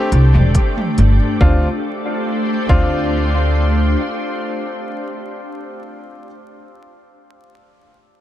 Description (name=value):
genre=ambient dub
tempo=70 BPM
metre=4/4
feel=swing 53% on 16ths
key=D minor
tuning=A4 = 440 Hz
part: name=soft additive organ-like pad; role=sustained chords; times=0.0-5.4 s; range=A3 to C5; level=-22 LUFS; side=equal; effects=ensemble chorus, built-in reverb, vintage 12-bit sampler grit
part: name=clear upright piano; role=stabs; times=0.0-6.3 s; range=C4 to F4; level=-24 LUFS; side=left 1 dB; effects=dub echo
part: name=upright bass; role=bass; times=0.1-3.9 s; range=E1 to D2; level=-13 LUFS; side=equal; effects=none
part: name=organic electronic drum kit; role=drums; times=0.1-1.2 s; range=hi-hat, toms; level=-27 LUFS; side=equal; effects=dub echo
part: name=electronic kick drum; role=drums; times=0.5-3.0 s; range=none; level=-16 LUFS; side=equal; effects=overdrive
room=little or no reverb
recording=vinyl crackle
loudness=-14 LUFS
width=side -12 dB against mid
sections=0.0-1.4 A section; 1.4-4.8 B section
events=none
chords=0.0 Am7; 1.4 Dm7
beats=0.55 | 1.41 2.27 3.12 3.98